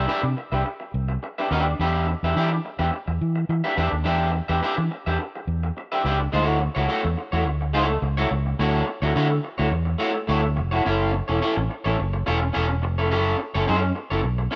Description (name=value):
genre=disco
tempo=106 BPM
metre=4/4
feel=straight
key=D major from 6.3 s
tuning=A4 = 440 Hz
part: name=electric guitar through a small old amp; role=accompaniment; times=0.0-14.6 s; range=A3 to E5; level=-26 LUFS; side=equal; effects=lush chorus
part: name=fingered electric bass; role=bass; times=0.0-14.5 s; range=E1 to E3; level=-26 LUFS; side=equal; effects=none
room=light reverb, digital ambience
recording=none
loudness=-24 LUFS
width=mono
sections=0.0-6.3 A section; 6.3-14.6 B section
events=none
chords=0.0 Cmaj9; 1.8 Em7; 6.3 Dmaj9; 10.8 F#m7